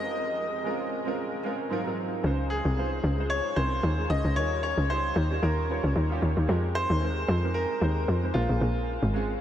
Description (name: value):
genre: amapiano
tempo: 113 BPM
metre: 4/4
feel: swing 55% on 16ths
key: unclear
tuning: A4 = 441 Hz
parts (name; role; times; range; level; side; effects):
- bright baby grand piano; melody; 0.0-9.1 s; F4 to Eb5; -31 LUFS; left 1 dB; tape echo
- warm baby grand piano; accompaniment; 0.0-9.4 s; Ab2 to Db5; -32 LUFS; right 2 dB; analog chorus
- tight log drum bass; bass; 2.2-9.4 s; Ab1 to F2; -26 LUFS; equal; none
room: moderate huge ambient reverb, RT60 7.6 s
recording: dreamy mix soaked in reverb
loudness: -25 LUFS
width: side -10 dB against mid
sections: 0.0-9.4 A section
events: none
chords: 0.0 Bbm9; 1.7 Ab13; 2.2 Dbmaj9; 4.4 Eb9; 6.5 Fm11; 8.3 Bbm9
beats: | 0.12 0.65 1.18 1.71 | 2.24 2.77 3.30 3.83 | 4.36 4.89 5.43 5.96 | 6.49 7.02 7.55 8.08 | 8.61 9.14